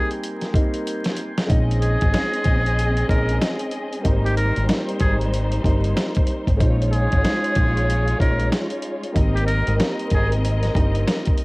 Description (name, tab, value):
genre	hip hop, boom-bap hip-hop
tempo	94 BPM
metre	4/4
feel	swing 60% on 16ths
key	Bb dorian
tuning	A4 = 440 Hz
part	trumpet with metal mute	melody	0.0-10.3 s	G4 to Bb4	-26 LUFS	equal	high-pass filter, low-pass filter, cassette tape
part	dark grand piano	accompaniment	0.0-11.4 s	G3 to C5	-27 LUFS	equal	high-pass filter, low-pass filter, cassette tape
part	tonewheel organ	sustained chords	0.0-1.5 s	Bb4 to C6	-36 LUFS	equal	slow rotary speaker, high-pass filter, low-pass filter, cassette tape
part	dusty soul sampler-style drum kit	drums	0.1-11.4 s	hi-hat, kick drum, snare drum	-21 LUFS	equal	cassette tape
part	warm studio string section	stabs	1.5-11.4 s	G3 to Eb5	-27 LUFS	equal	high-pass filter, low-pass filter, cassette tape, tape echo
part	deep dub fingered electric bass	bass	1.5-11.0 s	G1 to Bb1	-21 LUFS	equal	none
room	small room reverb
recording	home recording on cassette, vinyl crackle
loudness	-18 LUFS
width	side -25 dB against mid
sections	0.0-1.5 A section; 1.5-11.4 B section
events	break 0.0-1.5; drum fill 0.9-1.5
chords	0.0 Abmaj9; 1.5 Bbm11; 4.1 Abmaj9; 6.6 Bbm11; 9.2 Abmaj9